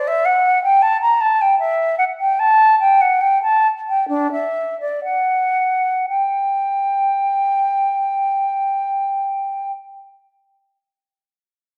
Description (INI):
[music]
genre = classical, baroque-style fantasia for unaccompanied flute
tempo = 55-82 BPM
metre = 4/4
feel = rubato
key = unclear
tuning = A4 = 440 Hz
[part]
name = mellow concert flute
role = solo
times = 0.0-9.7 s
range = D4 to Bb5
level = -18 LUFS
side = equal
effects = none
[sound]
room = wet recital hall reverb, RT60 1.4 s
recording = none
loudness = -18 LUFS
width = mono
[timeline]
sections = 0.0-6.1 A section; 6.1-10.1 B section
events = slowing down 0.0-6.1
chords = none